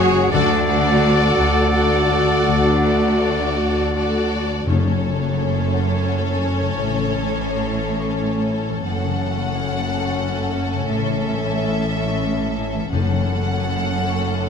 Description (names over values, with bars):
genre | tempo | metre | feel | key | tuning
cinematic | 54-60 BPM (dotted quarters) | 6/8 | rubato | F# minor | A4 = 440 Hz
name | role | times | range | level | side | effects
warm symphonic violin section | melody | 0.0-14.5 s | C#5 to F#5 | -27 LUFS | left 3 dB | none
clear oboe | second line | 0.0-4.3 s | C#5 to D5 | -25 LUFS | equal | none
mellow clarinet | second line | 0.0-4.3 s | G#4 to A4 | -26 LUFS | left 2 dB | none
small flute group | second line | 0.0-4.3 s | F#5 | -26 LUFS | right 3 dB | none
warm symphonic violin section | second line | 0.0-14.5 s | G#4 to A4 | -28 LUFS | left 2 dB | none
rich symphonic viola section | accompaniment | 0.0-14.5 s | C#4 to F#4 | -27 LUFS | right 1 dB | none
mellow French horn section | sustained chords | 0.0-14.5 s | G#3 to F#4 | -26 LUFS | left 4 dB | none
concert harp | arpeggios | 0.0-14.5 s | F#2 to C#6 | -27 LUFS | left 13 dB | none
clear symphonic cello section | bass | 0.0-14.5 s | D2 to A2 | -25 LUFS | right 2 dB | none
rich symphonic double bass section | bass | 0.0-14.5 s | F#1 to D2 | -25 LUFS | right 3 dB | none
timpani | percussion | 4.7-5.7, 12.9-13.9 s | F#2 | -24 LUFS | left 1 dB | none
room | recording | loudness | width
moderate recital hall reverb, RT60 1.4 s | close, detailed microphones | -17 LUFS | side -6 dB against mid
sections
0.0-4.7 A section; 4.7-14.5 B section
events
none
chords
0.3 D; 4.7 F#m; 6.8 A; 8.8 F#m; 10.9 A; 12.9 F#m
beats
| 0.33 1.37 | 2.47 3.59 | 4.68 5.72 | 6.76 7.80 | 8.84 9.86 | 10.88 11.90 | 12.91 13.91